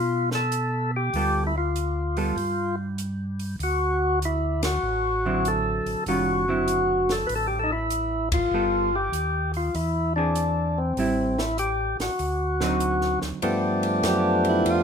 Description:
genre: soul jazz organ trio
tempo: 98 BPM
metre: 4/4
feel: swing 67% on 8ths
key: unclear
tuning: A4 = 438 Hz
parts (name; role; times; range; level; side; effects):
- percussive tonewheel organ; melody; 0.0-14.8 s; F3 to B4; -24 LUFS; left 1 dB; slow rotary speaker, overdrive
- hollow-body jazz guitar; accompaniment; 0.0-14.8 s; D3 to A4; -29 LUFS; right 5 dB; none
- tonewheel organ; bass; 0.0-14.8 s; F#1 to B2; -28 LUFS; equal; slow rotary speaker
- compact cocktail drum kit; drums; 0.3-14.8 s; hi-hat, kick drum, ride cymbal, snare drum; -33 LUFS; right 1 dB; none
- warm alto saxophone; melody; 14.1-14.8 s; E4 to G4; -26 LUFS; right 5 dB; none
room: moderate studio reverb, RT60 0.8 s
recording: minimal, uncompressed stereo recording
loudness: -22 LUFS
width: side -7 dB against mid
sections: 0.0-13.4 A section; 13.4-14.8 B section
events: band accent 4.5-4.8, 8.2-8.5; alto saxophone solo 13.4-14.8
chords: 0.0 G9; 3.6 D9; 8.5 G9; 9.8 E7b13; 11.0 Am7; 12.2 D7b9; 13.4 G9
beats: 0.53 | 1.14 1.76 2.37 2.99 | 3.60 4.22 4.83 5.45 | 6.06 6.68 7.29 7.91 | 8.52 9.14 9.75 10.36 | 10.98 11.59 12.21 12.82 | 13.43 14.04 14.66

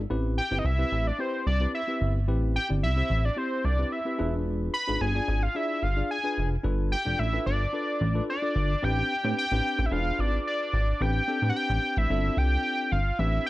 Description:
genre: early-eighties boogie funk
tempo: 110 BPM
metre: 4/4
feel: straight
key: A minor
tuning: A4 = 440 Hz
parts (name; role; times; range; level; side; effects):
- chorused synth bass; bass; 0.0-13.4 s; E1 to A2; -26 LUFS; equal; none
- tine electric piano; accompaniment; 0.1-13.5 s; C4 to D5; -32 LUFS; left 2 dB; none
- fat analog lead; melody; 0.4-13.5 s; C5 to B5; -29 LUFS; equal; slapback echo
room: digital ambience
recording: none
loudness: -24 LUFS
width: side -17 dB against mid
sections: 0.0-8.8 A section; 8.8-13.5 B section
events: none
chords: 0.1 Am7; 4.2 E7b9; 6.6 G7; 8.8 Am11; 9.9 E7b9; 11.0 Am11; 12.1 G7sus4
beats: | 0.10 0.64 1.19 1.74 | 2.28 2.83 3.37 3.92 | 4.46 5.01 5.55 6.10 | 6.64 7.19 7.74 8.28 | 8.83 9.37 9.92 10.46 | 11.01 11.55 12.10 12.64 | 13.19

